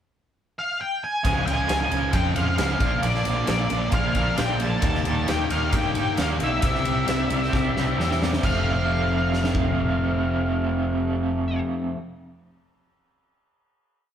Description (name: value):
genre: classic rock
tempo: 134 BPM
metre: 4/4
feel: straight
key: F mixolydian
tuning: A4 = 440 Hz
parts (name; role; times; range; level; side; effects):
- octave-fuzz lead guitar; melody; 0.6-11.6 s; D5 to A5; -27 LUFS; left 1 dB; distortion
- crunchy overdriven guitar; riff; 1.2-12.0 s; F2 to E4; -27 LUFS; left 2 dB; none
- overdriven electric guitar; riff; 1.2-12.0 s; F2 to G4; -29 LUFS; right 5 dB; tremolo
- fuzz fingered electric bass; bass; 1.2-11.6 s; F1 to G2; -27 LUFS; equal; overdrive
- big rock drum kit; drums; 1.2-9.7 s; crash cymbal, kick drum, ride cymbal, snare drum; -27 LUFS; equal; none
room: moderate stone room reverb, RT60 1.4 s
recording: band playing live in one room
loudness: -21 LUFS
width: side -9 dB against mid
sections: 0.0-1.3 pickup bar; 1.3-8.4 pre-chorus; 8.4-12.0 final chord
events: drum fill 7.5-8.4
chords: 0.0 N.C.; 1.3 Db; 2.8 Bb; 4.8 Eb; 6.6 C; 8.4 F